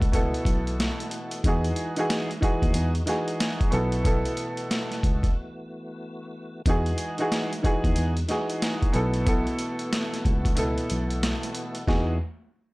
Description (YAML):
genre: hip hop, boom-bap hip-hop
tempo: 92 BPM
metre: 4/4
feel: swing 63% on 16ths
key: E major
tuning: A4 = 440 Hz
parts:
  - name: dark concert grand piano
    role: accompaniment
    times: 0.0-12.1 s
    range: B2 to A4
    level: -28 LUFS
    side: right 1 dB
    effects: cassette tape, high-pass filter, low-pass filter
  - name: tonewheel organ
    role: sustained chords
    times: 0.0-12.2 s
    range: E3 to F#4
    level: -38 LUFS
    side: equal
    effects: none
  - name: tine electric piano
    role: bass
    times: 0.0-12.2 s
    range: B1 to E2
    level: -27 LUFS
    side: equal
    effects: tube saturation
  - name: boom bap sampler-style drum kit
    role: drums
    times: 0.0-12.1 s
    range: hi-hat, kick drum, snare drum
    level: -26 LUFS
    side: equal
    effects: none
room: little or no reverb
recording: dry, gritty hardware recording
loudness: -23 LUFS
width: side -23 dB against mid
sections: 0.0-6.7 A section; 6.7-11.9 B section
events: break 5.4-6.7, 10.6-11.9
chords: 0.0 B7sus4; 1.4 Emaj9; 3.7 B7sus4; 6.7 Emaj9; 8.9 B7sus4; 11.9 Emaj9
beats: 0.14 0.79 | 1.44 2.09 2.75 3.40 | 4.05 4.70 5.35 6.01 | 6.66 7.31 7.96 8.62 | 9.27 9.92 10.57 11.22 | 11.88